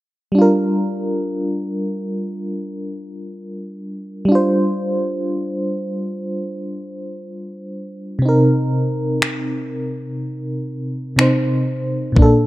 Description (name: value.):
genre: contemporary R&B.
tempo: 61 BPM.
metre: 4/4.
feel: swing 58% on 16ths.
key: G minor.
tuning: A4 = 438 Hz.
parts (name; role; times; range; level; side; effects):
FM electric piano with tremolo; accompaniment; 0.3-12.5 s; Bb2 to C5; -18 LUFS; equal; none.
smooth R&B drum kit; drums; 9.2-12.4 s; finger snaps, kick drum; -16 LUFS; equal; none.
room: light reverb, digital ambience.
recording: dark, warm production.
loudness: -17 LUFS.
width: side -17 dB against mid.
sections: 0.4-12.5 A section.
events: none.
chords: 0.4 Gm7; 8.2 Cm7.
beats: | 0.36 1.35 2.33 3.31 | 4.30 5.28 6.26 7.25 | 8.23 9.22 10.20 11.18 | 12.17.